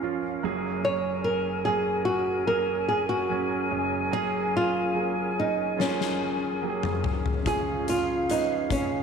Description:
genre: pop ballad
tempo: 72 BPM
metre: 4/4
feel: straight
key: F# major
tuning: A4 = 441 Hz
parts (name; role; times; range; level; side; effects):
- flamenco guitar; melody; 0.0-9.0 s; C#4 to C#5; -27 LUFS; right 1 dB; slapback echo
- clear baby grand piano; accompaniment; 0.0-9.0 s; F#1 to B4; -30 LUFS; right 7 dB; none
- small flute group; sustained chords; 0.0-9.0 s; C#4 to G#5; -32 LUFS; left 4 dB; none
- huge arena drum kit; drums; 5.8-8.9 s; hi-hat, kick drum, snare drum, toms; -30 LUFS; left 5 dB; none
room: moderate echo chamber reverb, RT60 2.2 s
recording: 1960s-style stereo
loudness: -24 LUFS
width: side -6 dB against mid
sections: 0.0-9.0 A section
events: drum fill 5.8-7.5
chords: 0.4 F#add9; 7.5 C#

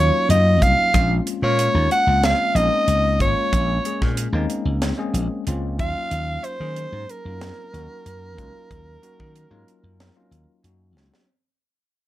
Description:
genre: electric jazz fusion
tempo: 93 BPM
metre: 4/4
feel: straight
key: unclear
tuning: A4 = 440 Hz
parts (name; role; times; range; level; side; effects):
- growling soprano saxophone; melody; 0.0-10.7 s; Bb4 to Gb5; -21 LUFS; right 1 dB; none
- bell-like tine electric piano; accompaniment; 0.0-11.3 s; Gb3 to Ab4; -27 LUFS; left 4 dB; fast stereo tremolo
- slap bass; bass; 0.0-11.1 s; Ab1 to Eb3; -21 LUFS; equal; none
- crisp fusion drum kit; drums; 0.3-11.3 s; hi-hat, kick drum, snare drum; -24 LUFS; equal; none
room: light reverb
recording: dark, warm production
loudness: -17 LUFS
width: side -14 dB against mid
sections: 0.0-11.3 A section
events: fade-out 0.0-11.3; drum fill 11.0-11.3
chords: 0.0 Ebm9; 0.9 Bbm9; 5.8 Ebm9

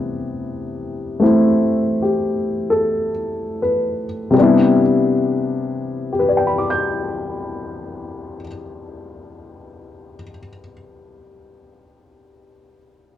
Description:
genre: jazz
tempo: 34-45 BPM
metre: 4/4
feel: swing 69% on 8ths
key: C major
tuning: A4 = 440 Hz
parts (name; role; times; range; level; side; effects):
- warm baby grand piano; accompaniment; 0.0-13.2 s; C3 to G6; -17 LUFS; left 2 dB; none
room: moderate studio reverb, RT60 0.9 s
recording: worn, warbling old tape, cassette tape, warbly pitch drift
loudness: -16 LUFS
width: side -11 dB against mid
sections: 0.0-4.4 A section; 4.4-11.4 B section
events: slowing down 0.0-4.4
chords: 0.0 Cmaj9

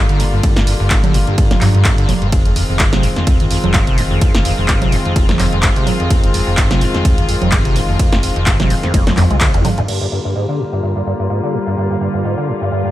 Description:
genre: acid house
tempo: 127 BPM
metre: 4/4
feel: swing 55% on 16ths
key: G phrygian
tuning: A4 = 439 Hz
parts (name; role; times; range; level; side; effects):
- dark studio string section; sustained chords; 0.0-12.9 s; D3 to F4; -21 LUFS; left 2 dB; sidechain pumping, low-pass filter
- liquid acid bass; riff; 0.0-12.9 s; Eb2 to Ab3; -18 LUFS; equal; overdrive, wide subtle chorus, cassette tape, sidechain pumping, dub echo
- warm sub bass; bass; 0.0-9.6 s; F1 to G2; -19 LUFS; equal; tube saturation, sidechain pumping
- punchy analog drum machine; drums; 0.1-10.0 s; congas, crash cymbal, handclaps, hi-hat, ride cymbal, snare drum, toms; -19 LUFS; right 2 dB; none
- electronic kick drum; drums; 0.4-9.5 s; none; -15 LUFS; equal; none
- warbly tape-like pad; texture; 10.8-12.9 s; G3 to D5; -24 LUFS; right 1 dB; chorus, built-in reverb, phaser, sidechain pumping
room: light reverb, digital ambience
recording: none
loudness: -12 LUFS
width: side -14 dB against mid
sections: 0.0-9.9 A section; 9.9-12.9 B section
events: drop 0.0-9.9; drum fill 8.9-9.9; filter sweep on string section 9.9-12.9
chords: 0.0 Gm7; 2.3 Fm7; 9.9 Gm7

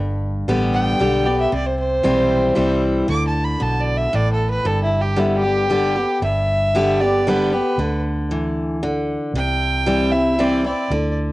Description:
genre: honky-tonk and classic country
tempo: 115 BPM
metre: 3/4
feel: straight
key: G major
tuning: A4 = 440 Hz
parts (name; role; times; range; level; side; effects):
- picked steel-string acoustic guitar; accompaniment; 0.0-11.3 s; G2 to G4; -19 LUFS; left 1 dB; cassette tape
- vintage muted fingered electric bass; bass; 0.0-11.3 s; G1 to D2; -23 LUFS; right 1 dB; none
- rich fiddle; melody; 0.7-11.1 s; E4 to D6; -21 LUFS; right 1 dB; cassette tape
room: light reverb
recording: home recording on cassette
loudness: -16 LUFS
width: side -18 dB against mid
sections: 0.0-6.2 A section; 6.2-11.3 B section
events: fiddle solo 0.0-6.2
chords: 0.0 G; 1.5 C; 3.1 D5; 4.7 G; 7.8 Dsus2; 9.3 C

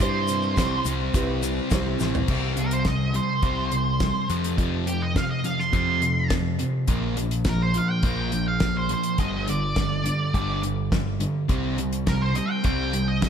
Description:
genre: classic rock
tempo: 104 BPM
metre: 4/4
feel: straight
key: C major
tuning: A4 = 440 Hz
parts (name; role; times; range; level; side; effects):
- octave-fuzz lead guitar; melody; 0.0-13.3 s; G4 to C6; -28 LUFS; right 2 dB; distortion, slapback echo
- warm grand piano; accompaniment; 0.0-2.2 s; E4 to C5; -32 LUFS; right 3 dB; none
- sludgy distorted guitar; riff; 0.0-13.3 s; F2 to C4; -29 LUFS; left 10 dB; overdrive
- sludgy distorted guitar; riff; 0.0-13.3 s; F2 to C4; -29 LUFS; right 10 dB; overdrive
- growling picked electric bass; bass; 0.0-13.3 s; G1 to G2; -28 LUFS; equal; overdrive
- damped 70s drum kit; drums; 0.0-13.3 s; crash cymbal, hi-hat, kick drum, snare drum, toms; -27 LUFS; equal; none
- tube shaker; percussion; 0.3-2.2 s; none; -41 LUFS; left 10 dB; none
room: light reverb, small room reverb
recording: none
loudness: -22 LUFS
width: side -8 dB against mid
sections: 0.0-2.3 A section; 2.3-13.3 B section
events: drum fill 2.0; lead electric guitar solo 2.3-13.3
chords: 0.0 C; 2.3 C5; 4.3 F5; 6.9 Bb5; 9.2 G5; 11.5 C5

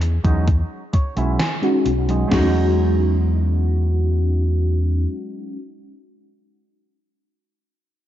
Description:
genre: vaporwave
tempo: 65 BPM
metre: 4/4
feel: straight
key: E major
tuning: A4 = 440 Hz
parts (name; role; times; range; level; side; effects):
- semi-hollow electric guitar; riff; 0.0-5.6 s; F#3 to G#5; -27 LUFS; right 3 dB; lush chorus, low-pass filter, tape echo
- overdriven fingered electric bass; bass; 0.0-5.0 s; B1 to E2; -19 LUFS; equal; low-pass filter
- gated 80s digital drum machine; drums; 0.0-2.3 s; hi-hat, snare drum; -26 LUFS; left 1 dB; gated reverb, gated reverb snare, overdrive
- gated 80s digital drum machine; drums; 0.2-2.5 s; crash cymbal, kick drum, snare drum; -20 LUFS; equal; gated reverb, gated reverb snare, overdrive
- mellow FM electric piano; accompaniment; 1.6-5.6 s; G#3 to F#4; -22 LUFS; equal; ensemble chorus, tape echo
room: light reverb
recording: dark, warm production, nothing above 7.5 kHz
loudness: -17 LUFS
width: side -12 dB against mid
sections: 0.0-2.3 A section; 2.3-6.0 B section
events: clean electric guitar fill 0.5-2.3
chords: 0.0 Emaj13

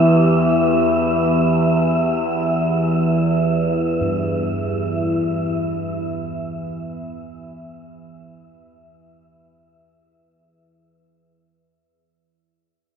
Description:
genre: dark ambient drone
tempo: free time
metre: none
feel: none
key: E minor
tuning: A4 = 440 Hz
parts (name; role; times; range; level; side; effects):
- sweeping resonant pad; sustained chords; 0.0-10.5 s; E3 to G4; -25 LUFS; right 2 dB; chorus, shimmer reverb
- gamelan-type bossed gongs; arpeggios; 0.0-10.9 s; G2; -31 LUFS; right 1 dB; diffuse ambient delay
- overtone-sweeping drone; drone; 0.0-10.6 s; E2 to E3; -20 LUFS; equal; chorus, built-in reverb
- wind-like tuned noise texture; texture; 0.0-10.5 s; E5; -23 LUFS; left 1 dB; built-in reverb, shimmer reverb
room: wet cathedral reverb, RT60 6.2 s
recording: in a vast, echoing space, cassette tape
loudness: -17 LUFS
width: side -7 dB against mid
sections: 0.0-10.5 A section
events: fade-out on analog synth pad 0.0-10.5; fade-out on kettle gongs 0.0-10.5; fade-out 0.0-10.5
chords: 0.0 Em

